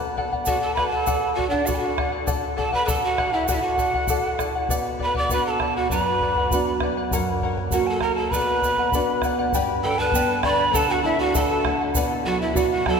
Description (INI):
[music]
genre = andean folk, Andean ensemble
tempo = 99 BPM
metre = 2/4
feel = straight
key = B minor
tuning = A4 = 436 Hz
[part]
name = charango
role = accompaniment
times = 0.0-13.0 s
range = G4 to B5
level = -26 LUFS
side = left 3 dB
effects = none
[part]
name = bombo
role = percussion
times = 0.2-13.0 s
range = none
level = -28 LUFS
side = left 2 dB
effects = none
[part]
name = breathy mellow quena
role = melody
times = 0.5-13.0 s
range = D5 to D6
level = -25 LUFS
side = right 2 dB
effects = none
[part]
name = breathy pan flute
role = second line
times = 0.5-13.0 s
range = D4 to D5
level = -27 LUFS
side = right 1 dB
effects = none
[part]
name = egg shaker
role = percussion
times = 0.5-12.7 s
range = none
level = -34 LUFS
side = right 6 dB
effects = none
[part]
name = nylon-string guitar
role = accompaniment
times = 4.7-13.0 s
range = F#2 to A4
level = -28 LUFS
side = right 4 dB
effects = none
[sound]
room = wet cathedral reverb, RT60 5.8 s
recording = recorded in a church or concert hall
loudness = -20 LUFS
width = side -6 dB against mid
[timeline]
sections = 0.0-9.5 A section; 9.5-13.0 B section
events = none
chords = 0.0 D; 4.7 Bm; 7.1 F#; 8.3 Bm; 9.5 G; 10.7 D; 12.0 Bm